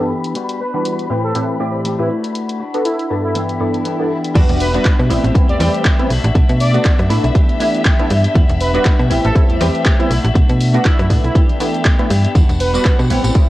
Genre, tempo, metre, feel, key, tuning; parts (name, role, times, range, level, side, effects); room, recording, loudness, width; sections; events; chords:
filtered disco house; 120 BPM; 4/4; swing 56% on 16ths; E minor; A4 = 444 Hz
funky polysynth comp; accompaniment; 0.0-13.5 s; G2 to D5; -20 LUFS; equal; chorus, phaser, sidechain pumping, low-pass filter, cassette tape
clear studio string section; sustained chords; 0.0-13.5 s; E5 to B5; -27 LUFS; left 2 dB; sidechain pumping, low-pass filter, cassette tape
twelve-string electric guitar; riff; 0.0-13.5 s; E3 to G4; -23 LUFS; left 3 dB; sidechain pumping, low-pass filter, cassette tape
tambourine; percussion; 0.1-4.3, 12.4-13.5 s; -32 LUFS; right 2 dB; sidechain pumping on perc, low-pass filter on perc
house drum kit; drums; 0.2-13.5 s; crash cymbal, handclaps, hi-hat, ride cymbal, rim click, shaker; -24 LUFS; equal; sidechain pumping on hats, studio reverb, cassette tape, sidechain pumping on cymbals, sidechain pumping on perc
analog synth brass; melody; 0.6-12.9 s; E4 to D5; -23 LUFS; right 1 dB; chorus, sidechain pumping, low-pass filter, cassette tape, analog delay
swell; sound effects; 3.5-4.4 s; -28 LUFS; right 3 dB
slap-like FM bass; bass; 4.4-13.3 s; E1 to B2; -16 LUFS; equal; tube saturation, sidechain pumping, low-pass filter
electronic kick drum; drums; 4.4-13.5 s; -13 LUFS; equal; studio reverb, cassette tape
light reverb; home recording on cassette; -12 LUFS; side -16 dB against mid
0.0-4.4 A section; 4.4-13.5 B section
swell 3.5-4.4; drop 4.4-13.5
0.4 Em9; 1.1 Am7; 2.1 Bm7; 3.4 G6; 4.4 Em9; 5.1 Am7; 6.1 Bm7; 7.4 G6; 8.4 Em9; 9.1 Am7; 10.1 Bm7; 11.4 G6; 12.4 Em9